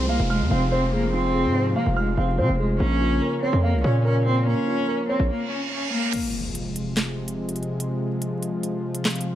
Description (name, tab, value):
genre	hip hop, drill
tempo	144 BPM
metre	4/4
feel	half-time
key	F minor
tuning	A4 = 440 Hz
part	warm cello	melody	0.0-6.1 s	Ab3 to Db4	-25 LUFS	equal	none
part	dark concert grand piano	accompaniment	0.0-6.1 s	Bb3 to F6	-27 LUFS	right 2 dB	none
part	warm analog pad	sustained chords	0.0-9.4 s	C3 to F4	-28 LUFS	left 1 dB	chorus
part	distorted 808-style bass	bass	0.0-5.3 s	F1 to C3	-22 LUFS	equal	distortion
part	downlifter, reverse cymbal and impact	sound effects	0.0-7.8 s	none	-33 LUFS	right 1 dB	none
part	drill drum kit	drums	6.1-9.3 s	crash cymbal, handclaps, hi-hat, snare drum	-28 LUFS	equal	none
room	light reverb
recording	vinyl crackle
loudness	-21 LUFS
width	side -12 dB against mid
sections	0.0-6.1 A section; 6.1-9.4 B section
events	stop 5.3-6.1; reverse cymbal 5.4-6.1; break 6.1-9.4; impact 6.1-7.8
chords	0.0 Fm; 2.8 Bbm; 6.1 Fm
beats	0.30 0.72 | 1.13 1.55 1.97 2.38 | 2.80 3.22 3.63 4.05 | 4.47 4.88 5.30 5.72 | 6.13 6.55 6.97 7.38 | 7.80 8.22 8.63 9.05